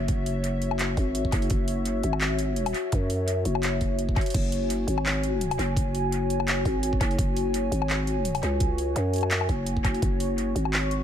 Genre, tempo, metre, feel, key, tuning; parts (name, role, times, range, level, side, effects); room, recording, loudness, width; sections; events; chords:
half-time drum and bass; 169 BPM; 4/4; swing 55% on 16ths, half-time; A4 = 440 Hz
dark analog pad; sustained chords; 0.0-11.0 s; F#4 to C#6; -30 LUFS; left 2 dB; chorus, phaser, sidechain pumping
growling 808-style bass; bass; 0.0-11.0 s; F#1 to F#2; -27 LUFS; equal
drum and bass drum kit; drums; 0.1-11.0 s; crash cymbal, handclaps, hi-hat, woodblock; -31 LUFS; left 2 dB; overdrive, tape echo
electronic kick drum; drums; 0.1-10.1 s; -26 LUFS; equal; overdrive
digital ambience; echo-heavy mix; -23 LUFS; side -9 dB against mid
0.0-11.0 A section
0.0 F#sus2